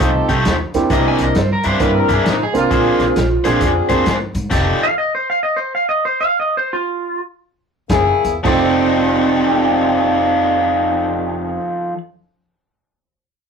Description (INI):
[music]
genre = electric blues shuffle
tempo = 106-133 BPM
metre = 4/4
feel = swing 63% on 8ths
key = F mixolydian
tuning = A4 = 440 Hz
[part]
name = clean lap steel guitar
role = melody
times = 0.0-0.3, 4.8-7.2 s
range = F4 to F5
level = -17 LUFS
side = right 1 dB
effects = none
[part]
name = warm upright piano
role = accompaniment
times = 0.0-4.1, 8.4-11.6 s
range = F2 to Bb4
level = -20 LUFS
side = right 4 dB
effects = none
[part]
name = overdriven electric guitar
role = riff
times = 0.0-4.8, 8.4-12.0 s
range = C3 to D5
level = -18 LUFS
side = left 2 dB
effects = none
[part]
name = mellow horn section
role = stabs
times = 0.0-4.9, 7.9-11.6 s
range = A3 to D5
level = -21 LUFS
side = left 4 dB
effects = none
[part]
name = upright bass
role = bass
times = 0.0-4.7, 7.9-11.6 s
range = F1 to A2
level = -22 LUFS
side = equal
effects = none
[part]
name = vintage drum kit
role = drums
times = 0.0-4.6, 7.9-8.6 s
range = crash cymbal, hi-hat, kick drum, snare drum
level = -21 LUFS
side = equal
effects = none
[part]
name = electric guitar at the edge of break-up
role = second line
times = 0.9-3.9, 8.5-11.6 s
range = C4 to Ab5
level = -19 LUFS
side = right 3 dB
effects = none
[sound]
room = moderate small room reverb, RT60 0.5 s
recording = rough rehearsal-room recording, warm saturation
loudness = -14 LUFS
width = side -6 dB against mid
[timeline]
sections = 0.0-8.4 A section; 8.4-13.0 B section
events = slowing down 4.5-8.4; stop 4.5-7.9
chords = 0.0 F9; 0.9 C9; 2.7 Bb9; 4.5 F13; 7.9 Gb9; 8.4 F13